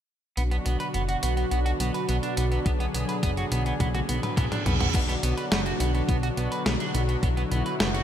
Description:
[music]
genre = synthwave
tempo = 105 BPM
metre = 4/4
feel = straight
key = B dorian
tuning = A4 = 440 Hz
[part]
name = brassy analog pad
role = sustained chords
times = 0.4-8.0 s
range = B2 to G#4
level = -30 LUFS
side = equal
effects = chorus, sidechain pumping
[part]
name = electric guitar at the edge of break-up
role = riff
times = 0.4-8.0 s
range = B3 to B4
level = -32 LUFS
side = right 3 dB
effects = lush chorus, low-pass filter, ping-pong delay
[part]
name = chorused synth bass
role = bass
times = 0.4-8.0 s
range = F#1 to B1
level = -27 LUFS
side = equal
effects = none
[part]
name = clean 12-bit digital drum machine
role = drums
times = 0.4-8.0 s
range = crash cymbal, hi-hat, snare drum, toms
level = -30 LUFS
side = equal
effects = overdrive, gated reverb
[part]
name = electronic kick drum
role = drums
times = 2.7-7.3 s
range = none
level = -26 LUFS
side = equal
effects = overdrive
[part]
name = reverse cymbal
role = sound effects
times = 4.3-4.9 s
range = none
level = -34 LUFS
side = right 4 dB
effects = none
[sound]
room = light reverb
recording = bright 1980s-style digital production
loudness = -23 LUFS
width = side -10 dB against mid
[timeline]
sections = 0.4-4.9 A section; 4.9-8.0 B section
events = filter sweep on analog synth bass 0.4-4.9; drum fill 3.8-4.9; reverse cymbal 4.3-4.9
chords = 0.4 Bm

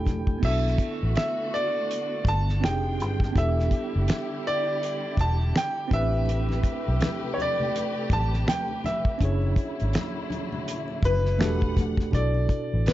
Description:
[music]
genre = R&B, neo-soul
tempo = 82 BPM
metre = 4/4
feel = swing 59% on 16ths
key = unclear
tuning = A4 = 440 Hz
[part]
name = clear grand piano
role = melody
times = 0.0-12.9 s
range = B4 to A5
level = -29 LUFS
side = equal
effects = tape echo
[part]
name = tine electric piano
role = accompaniment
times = 0.0-12.9 s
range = B2 to B5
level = -32 LUFS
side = right 2 dB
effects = overdrive, fast stereo tremolo
[part]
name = vintage muted fingered electric bass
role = bass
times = 0.0-12.9 s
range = E1 to B1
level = -25 LUFS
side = equal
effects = none
[part]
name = damped 70s drum kit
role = drums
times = 0.1-12.9 s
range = crash cymbal, finger snaps, hi-hat, kick drum, snare drum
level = -26 LUFS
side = equal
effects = none
[part]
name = congas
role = percussion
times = 0.1-0.3, 6.3-12.9 s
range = none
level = -37 LUFS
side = left 1 dB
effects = none
[part]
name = warm studio string section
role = sustained chords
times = 0.4-12.1 s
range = A#2 to G5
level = -35 LUFS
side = left 2 dB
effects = none
[sound]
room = light reverb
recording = dark, warm production, nothing above 7.6 kHz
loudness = -23 LUFS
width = side -14 dB against mid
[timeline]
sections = 0.4-12.1 A section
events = tine electric piano fill 0.0-0.4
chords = 0.4 Bm7; 2.6 Fm9; 3.4 Em7; 5.9 Am9; 9.2 F#7b13; 11.4 Em11; 12.1 Bm7

